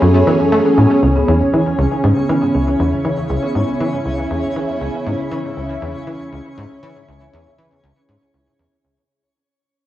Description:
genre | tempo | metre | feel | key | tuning
ambient | 119 BPM | 4/4 | straight | C# minor | A4 = 440 Hz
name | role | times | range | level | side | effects
lush unison pad | sustained chords | 0.0-9.1 s | C#3 to G#4 | -19 LUFS | left 1 dB | chorus, phaser, cassette tape
vibraphone with medium mallets | arpeggios | 0.0-5.0 s | B3 to C#5 | -20 LUFS | right 2 dB | auto-pan, cassette tape, tape echo
tight sequencer bass | riff | 0.0-9.0 s | C#2 to A3 | -17 LUFS | equal | lush chorus, cassette tape, tape echo
twinkling granular texture | texture | 1.4-9.1 s | C#4 to C#5 | -28 LUFS | equal | built-in reverb, cassette tape
room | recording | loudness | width
wet studio reverb, RT60 0.6 s | home recording on cassette | -14 LUFS | side -14 dB against mid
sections
0.0-1.0 A section; 1.0-9.1 B section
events
fade-out on analog synth bass 1.0-9.1; fade-out 1.0-9.1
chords
0.0 F#madd9; 1.0 C#m

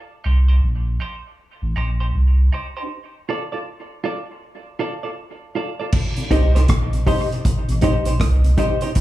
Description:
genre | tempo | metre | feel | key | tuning
dub reggae | 79 BPM | 4/4 | swing 63% on 16ths | C dorian | A4 = 440 Hz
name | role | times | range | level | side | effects
semi-hollow electric guitar | accompaniment | 0.2-8.9 s | Eb4 to D5 | -27 LUFS | right 4 dB | warbly pitch drift, high-pass filter, dub echo
warm sub bass | bass | 0.3-8.6 s | A1 to C2 | -16 LUFS | equal | none
vintage drum kit | drums | 5.9-9.0 s | crash cymbal, hi-hat, kick drum, rim click | -19 LUFS | equal | none
mellow tonewheel organ | accompaniment | 6.2-8.9 s | C3 to Eb4 | -28 LUFS | left 1 dB | slow rotary speaker
barky reed electric piano | stabs | 6.3-8.9 s | G4 to Eb5 | -26 LUFS | left 5 dB | overdrive, fast tremolo, dub echo
room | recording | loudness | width
studio ambience | studio reverb | -17 LUFS | side -15 dB against mid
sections
0.0-5.9 A section; 5.9-9.0 B section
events
filter sweep on clean electric guitar 0.0-2.9; break 2.9-5.9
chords
0.0 Cm; 2.9 Dm; 5.9 Cm

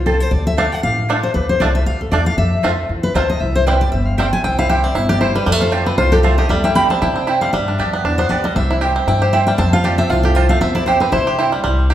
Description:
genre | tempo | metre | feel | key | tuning
bluegrass | 233 BPM | 4/4 | swing 56% on 8ths | C major | A4 = 442 Hz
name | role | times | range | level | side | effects
picked steel-string acoustic guitar | accompaniment | 0.0-11.9 s | A4 to B5 | -18 LUFS | left 2 dB | none
upright bass | bass | 0.0-11.9 s | G1 to C3 | -18 LUFS | equal | none
mandolin | stabs | 0.1-11.9 s | A3 to A5 | -22 LUFS | right 4 dB | none
bluegrass banjo | melody | 0.6-11.9 s | G3 to G4 | -20 LUFS | right 2 dB | none
room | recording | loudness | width
wet recital hall reverb, RT60 1.6 s | recorded in a church or concert hall | -14 LUFS | side -11 dB against mid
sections
0.0-4.4 A section; 4.4-11.9 A section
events
steel-string acoustic guitar solo 0.0-11.9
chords
0.3 Dm; 2.4 F; 3.4 C; 5.5 F; 6.5 C/E; 7.5 Gadd9; 8.6 C; 9.6 F; 10.6 C/E

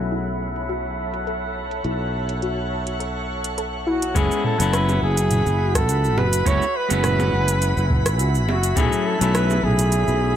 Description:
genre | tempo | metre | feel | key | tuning
sunset chillout | 104 BPM | 4/4 | swing 54% on 16ths | F# minor | A4 = 440 Hz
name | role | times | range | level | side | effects
semi-hollow electric guitar | accompaniment | 0.0-10.4 s | F#3 to E4 | -26 LUFS | moving between left 7 dB and right 7 dB | auto-pan, tape echo
shimmering ambient pad | sustained chords | 0.0-10.4 s | A3 to C#6 | -29 LUFS | right 2 dB | chorus, built-in reverb
sustaining fretless electric bass | bass | 0.0-10.4 s | F#1 to C#2 | -23 LUFS | equal | tube saturation
drifting glass-harmonics texture | texture | 0.0-10.4 s | F#5 to B6 | -34 LUFS | left 2 dB | chorus, built-in reverb
soft round pluck | arpeggios | 0.1-4.0 s | E4 to A4 | -30 LUFS | left 3 dB | wide subtle chorus, tape echo
smooth R&B drum kit | drums | 0.1-10.2 s | hi-hat, rim click, shaker, toms | -26 LUFS | right 2 dB | overdrive
trumpet with bucket mute | melody | 3.9-10.4 s | F#4 to C#5 | -24 LUFS | equal | digital delay
electronic kick drum | drums | 4.2-8.9 s | none | -22 LUFS | equal | overdrive
bongos | percussion | 4.9-9.6 s | none | -29 LUFS | right 2 dB | none
room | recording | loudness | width
light reverb | low-pass filter | -19 LUFS | side -10 dB against mid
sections
0.0-4.2 A section; 4.2-10.4 B section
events
filter sweep on synth pluck 0.0-4.2; filter sweep 0.0-4.2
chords
0.0 B9sus4; 4.2 F#9sus4; 8.8 B9sus4

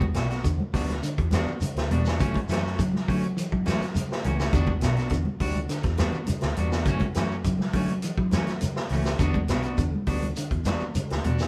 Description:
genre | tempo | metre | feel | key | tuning
afrobeat | 103 BPM | 4/4 | straight | E dorian | A4 = 440 Hz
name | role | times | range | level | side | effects
clean electric guitar | arpeggios | 0.0-11.4 s | G2 to F#3 | -34 LUFS | equal | tremolo
electric guitar at the edge of break-up | stabs | 0.0-11.4 s | E3 to F#4 | -34 LUFS | equal | none
vintage muted fingered electric bass | bass | 0.0-11.5 s | B1 to F#3 | -30 LUFS | equal | none
vintage drum kit | drums | 0.0-11.5 s | hi-hat, kick drum, snare drum | -32 LUFS | equal | none
congas | percussion | 0.0-11.4 s | none | -36 LUFS | equal | none
shekere | percussion | 0.2-11.5 s | none | -35 LUFS | equal | none
room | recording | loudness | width
wet studio reverb, RT60 0.8 s | band playing live in one room | -26 LUFS | mono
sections
0.0-11.5 A section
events
none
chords
0.0 Em9; 2.2 F#m7; 4.5 Em9; 6.9 F#m7; 9.2 Em9

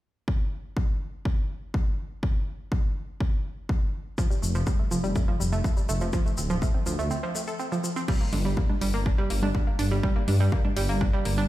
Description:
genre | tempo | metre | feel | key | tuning
melodic techno | 123 BPM | 4/4 | straight | G minor | A4 = 439 Hz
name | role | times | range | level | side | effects
electronic kick drum | drums | 0.3-11.1 s | none | -26 LUFS | equal | overdrive
analog pluck | arpeggios | 4.2-11.4 s | F3 to A4 | -30 LUFS | right 2 dB | chorus, sidechain pumping, digital delay
tube shaker | percussion | 4.2-8.1 s | none | -37 LUFS | left 4 dB | none
dark detuned saw bass | bass | 4.4-11.5 s | D1 to G2 | -26 LUFS | equal | sidechain pumping
punchy analog drum machine | drums | 8.1-11.4 s | congas, crash cymbal, hi-hat | -34 LUFS | equal | overdrive
room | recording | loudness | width
little or no reverb | played on a big sound system in a bare room, stone room reverb | -24 LUFS | side -15 dB against mid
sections
0.3-8.1 A section; 8.1-11.5 B section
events
break 7.1-8.1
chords
0.3 N.C.; 4.2 Fadd9; 6.1 Dm7; 8.1 Gm

